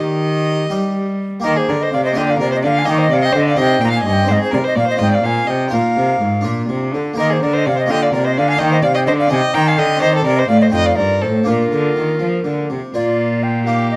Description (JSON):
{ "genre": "classical, baroque-style sonata movement with continuo", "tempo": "83 BPM (dotted quarters)", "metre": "6/8", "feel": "straight", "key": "Eb major, Bb major from 10.0 s", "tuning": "A4 = 439 Hz", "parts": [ { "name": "tenor recorder", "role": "melody", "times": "0.0-14.0 s", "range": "G4 to Bb5", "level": "-21 LUFS", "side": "equal", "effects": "none" }, { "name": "rich violin", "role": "second line", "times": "0.0-14.0 s", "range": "F4 to G5", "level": "-23 LUFS", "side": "equal", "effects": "none" }, { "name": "harpsichord", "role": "accompaniment", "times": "0.0-14.0 s", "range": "F2 to C5", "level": "-24 LUFS", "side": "equal", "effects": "none" }, { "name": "rich cello", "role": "bass", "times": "0.0-14.0 s", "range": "F2 to G3", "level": "-20 LUFS", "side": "equal", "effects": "none" } ], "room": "light reverb", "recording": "dark, warm production", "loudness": "-16 LUFS", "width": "mono", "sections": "0.0-1.4 A section; 1.4-12.9 B section; 12.9-14.0 A section", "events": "none", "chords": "0.0 Eb; 2.2 Bb; 2.9 Eb; 3.6 Cm; 4.3 Ab; 5.0 Fm/Ab; 5.7 Bbsus4; 6.5 Bb; 7.2 Eb; 7.9 Bb; 8.6 Eb; 9.3 Cm; 10.7 F7; 11.5 Bb" }